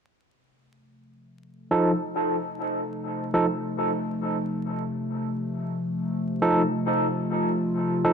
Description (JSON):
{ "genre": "ambient", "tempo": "free time", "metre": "none", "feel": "none", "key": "F mixolydian", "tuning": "A4 = 440 Hz", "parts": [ { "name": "warbly tape-like pad", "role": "sustained chords", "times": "2.4-8.1 s", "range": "C3 to A4", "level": "-28 LUFS", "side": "left 1 dB", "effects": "chorus, built-in reverb" }, { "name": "barky tine electric piano", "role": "stabs", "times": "1.7-8.1 s", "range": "F3 to A4", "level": "-25 LUFS", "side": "right 1 dB", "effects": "auto-pan, low-pass filter, dub echo" } ], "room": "moderate echo chamber reverb, RT60 1.7 s, digital ambience", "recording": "dark, warm production, vinyl crackle", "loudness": "-24 LUFS", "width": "side -6 dB against mid", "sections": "0.2-8.1 A section", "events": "fade-in on ambient pad 0.2-8.1", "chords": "0.2 F7" }